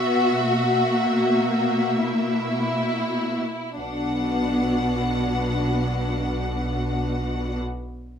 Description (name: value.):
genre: classical, slow romantic movement for string orchestra.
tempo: free time.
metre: none.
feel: none.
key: B minor.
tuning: A4 = 440 Hz.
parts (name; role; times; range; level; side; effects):
rich studio violin section; melody; 0.0-7.6 s; E5 to F#5; -31 LUFS; left 1 dB; none.
rich studio violin section; second line; 0.0-7.6 s; D4 to F#4; -26 LUFS; left 1 dB; none.
warm studio viola section; accompaniment; 0.0-7.6 s; A#3 to F#4; -27 LUFS; left 2 dB; none.
rich studio cello section; bass; 0.0-7.6 s; B2; -27 LUFS; right 1 dB; none.
clear studio double bass section; bass; 3.8-7.6 s; B1; -29 LUFS; right 2 dB; none.
room: light reverb.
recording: minimal, uncompressed stereo recording.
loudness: -21 LUFS.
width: side -8 dB against mid.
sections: 0.0-3.8 A section; 3.8-8.2 B section.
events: slowing down 0.0-3.8.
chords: 0.0 F#7/B; 3.8 Bm.